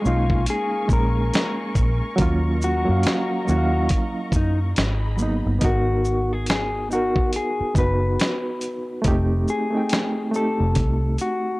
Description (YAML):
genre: lo-fi hip hop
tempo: 70 BPM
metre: 4/4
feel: swing 61% on 16ths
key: G# dorian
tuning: A4 = 440 Hz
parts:
  - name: reed electric piano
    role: accompaniment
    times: 0.0-11.6 s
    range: F#3 to G5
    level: -25 LUFS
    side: right 1 dB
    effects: fast tremolo, low-pass filter
  - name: rich studio string section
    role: sustained chords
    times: 0.0-5.6 s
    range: G#4 to C#6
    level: -34 LUFS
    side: left 2 dB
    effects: low-pass filter
  - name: mellow electric guitar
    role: melody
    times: 0.1-11.6 s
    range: D#4 to B4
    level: -26 LUFS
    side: left 2 dB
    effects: low-pass filter
  - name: vintage muted fingered electric bass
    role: bass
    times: 0.1-11.2 s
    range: F1 to F#2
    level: -22 LUFS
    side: equal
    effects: none
  - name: dusty soul sampler-style drum kit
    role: drums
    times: 0.1-11.4 s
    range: hi-hat, kick drum, shaker, snare drum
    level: -23 LUFS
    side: equal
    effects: none
room: light reverb, digital ambience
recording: dry, gritty hardware recording, transformer saturation, cassette tape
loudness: -19 LUFS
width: side -21 dB against mid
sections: 0.0-5.6 A section; 5.6-11.6 B section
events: none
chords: 0.0 A#m7; 2.2 D#m7; 4.8 G#m7; 9.0 F7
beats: 0.47 1.33 | 2.19 3.04 3.90 4.76 | 5.62 6.47 7.33 8.19 | 9.04 9.90 10.76